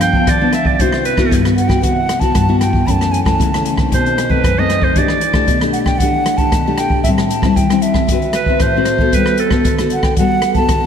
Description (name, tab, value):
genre	samba and choro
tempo	115 BPM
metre	4/4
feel	straight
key	G major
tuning	A4 = 440 Hz
part	hollow wooden flute	melody	0.0-10.9 s	E5 to B5	-20 LUFS	right 2 dB	ping-pong delay
part	clear clarinet	second line	0.0-9.8 s	A4 to G5	-18 LUFS	right 3 dB	none
part	nylon-string guitar	accompaniment	0.0-10.9 s	F#2 to B4	-16 LUFS	left 3 dB	wide subtle chorus
part	open jazz drum kit	drums	0.0-10.8 s	hi-hat, kick drum, rim click	-17 LUFS	equal	none
room	wet lush hall reverb, RT60 2.4 s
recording	dreamy mix soaked in reverb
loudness	-12 LUFS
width	side -8 dB against mid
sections	0.0-10.9 A section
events	none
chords	0.0 G7; 0.8 Cmaj7#11; 2.9 F#m7; 3.9 B7b9; 5.0 Em7; 7.0 Am7; 8.1 D13; 9.1 Gmaj9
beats	0.28 | 0.80 1.32 1.84 2.36 | 2.88 3.40 3.92 4.44 | 4.96 5.48 6.00 6.52 | 7.04 7.56 8.08 8.60 | 9.12 9.64 10.17 10.69